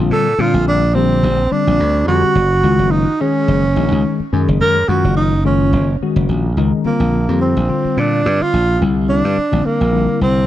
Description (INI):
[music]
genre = electric jazz fusion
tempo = 107 BPM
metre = 4/4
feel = swing 55% on 16ths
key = unclear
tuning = A4 = 440 Hz
[part]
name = tine electric piano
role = accompaniment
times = 0.0-10.5 s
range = D3 to Ab4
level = -19 LUFS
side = left 6 dB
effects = analog chorus
[part]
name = slap bass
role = bass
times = 0.0-10.5 s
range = Gb1 to Bb2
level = -16 LUFS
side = equal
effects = none
[part]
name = breathy tenor saxophone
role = melody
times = 0.1-10.5 s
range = Bb3 to Bb4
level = -17 LUFS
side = right 2 dB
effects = none
[sound]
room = small room ambience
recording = dry, close 1970s-style studio recording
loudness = -13 LUFS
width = side -13 dB against mid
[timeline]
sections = 0.0-6.9 A section; 6.9-10.5 B section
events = none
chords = 0.0 Bbadd9; 2.4 Gbmaj7sus2; 6.9 Bbadd9; 8.8 C9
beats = | 0.10 0.67 1.23 1.80 | 2.36 2.92 3.49 4.05 | 4.61 5.17 5.73 6.29 | 6.86 7.42 7.98 8.54 | 9.10 9.66 10.22